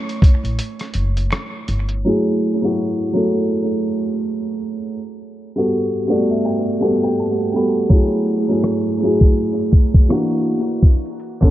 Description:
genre	lo-fi hip hop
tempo	82 BPM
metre	4/4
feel	swing 60% on 16ths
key	F# phrygian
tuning	A4 = 441 Hz
part	dark upright piano	accompaniment	0.0-11.5 s	D3 to B5	-18 LUFS	equal	cassette tape, analog delay
part	lo-fi sampler-style drum kit	drums	0.1-2.0, 7.9-11.5 s	hi-hat, kick drum, rim click	-13 LUFS	equal	none
part	upright bass	bass	0.4-2.0 s	F#1 to A1	-21 LUFS	equal	none
part	finger snap	percussion	1.3-1.5 s	none	-44 LUFS	right 4 dB	none
room	light reverb, small room ambience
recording	echo-heavy mix, cassette tape, low-pass filter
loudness	-15 LUFS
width	side -14 dB against mid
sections	0.0-2.0 A section; 2.0-11.5 B section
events	upright piano solo 0.0-2.0; break 0.6-2.0; filter sweep 2.0-11.5; upright piano fill 5.7-7.9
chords	0.0 F#m7; 2.0 F#m9; 5.0 Gmaj9; 7.9 F#m9; 10.1 F#7b13; 10.8 Bm9

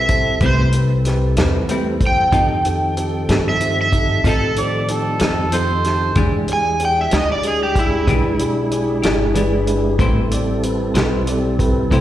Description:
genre	slow blues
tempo	63 BPM (dotted quarters)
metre	12/8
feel	straight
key	A minor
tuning	A4 = 437 Hz
part	overdriven slide guitar	melody	0.0-9.7 s	E4 to G#5	-19 LUFS	right 1 dB	slapback echo
part	dark upright piano	accompaniment	0.0-12.0 s	C4 to D5	-26 LUFS	right 3 dB	slapback echo
part	mellow tonewheel organ	sustained chords	0.0-12.0 s	Eb3 to A4	-23 LUFS	equal	slow rotary speaker, chorus vibrato
part	upright bass	bass	0.0-12.0 s	G1 to A2	-20 LUFS	equal	none
part	warm soul drum kit	drums	0.1-12.0 s	hi-hat, kick drum, snare drum	-20 LUFS	equal	none
part	clean electric guitar	accompaniment	0.4-12.0 s	A2 to C5	-24 LUFS	left 4 dB	tremolo, slapback echo
part	mellow harmonica	second line	4.6-6.2 s	A4 to D5	-22 LUFS	right 3 dB	overdrive, slapback echo
room	light reverb, studio reverb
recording	live gig heard through the venue's PA, recital hall reverb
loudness	-15 LUFS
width	side -12 dB against mid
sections	0.0-12.0 A section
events	none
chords	0.0 Am7; 2.3 F7; 6.2 E7#9; 10.0 Am7

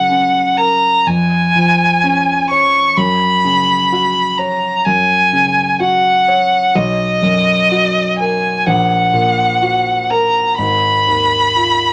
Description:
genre	classical, romantic duo for violin and grand piano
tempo	63 BPM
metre	4/4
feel	rubato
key	unclear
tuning	A4 = 438 Hz
part	rich violin	melody	0.0-11.9 s	D#5 to Db6	-15 LUFS	equal	none
part	warm concert grand piano	accompaniment	0.0-11.9 s	Ab1 to Db5	-20 LUFS	equal	none
room	moderate studio ambience, RT60 0.5 s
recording	none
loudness	-14 LUFS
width	mono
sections	0.0-11.9 A section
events	none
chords	0.0 Gb; 1.1 Db/F; 3.0 Gb5; 6.7 Bmaj7; 8.7 Gb/Bb; 10.6 Fm7b5/Ab

